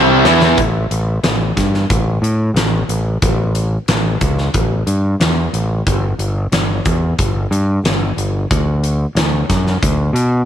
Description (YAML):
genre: classic rock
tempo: 91 BPM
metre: 4/4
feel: straight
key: unclear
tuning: A4 = 440 Hz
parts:
  - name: phased string machine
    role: sustained chords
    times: 0.1-0.6 s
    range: E4 to E5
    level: -26 LUFS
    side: left 1 dB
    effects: none
  - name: cranked stack guitar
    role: riff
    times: 0.0-0.6 s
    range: C3 to E4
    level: -16 LUFS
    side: right 13 dB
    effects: overdrive
  - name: raw garage guitar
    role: riff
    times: 0.0-0.6 s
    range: C3 to E4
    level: -16 LUFS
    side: left 14 dB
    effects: overdrive
  - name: growling fingered electric bass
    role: bass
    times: 0.0-10.4 s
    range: G1 to B2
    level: -16 LUFS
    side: equal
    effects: overdrive
  - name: huge arena drum kit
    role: drums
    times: 0.3-10.3 s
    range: hi-hat, kick drum, snare drum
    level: -18 LUFS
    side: equal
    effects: none
room: light reverb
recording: 1960s-style stereo with parts hard left and right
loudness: -13 LUFS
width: side -10 dB against mid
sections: 0.6-10.5 A section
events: drum fill 0.0-0.6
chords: 0.0 A5; 0.6 N.C.; 8.5 D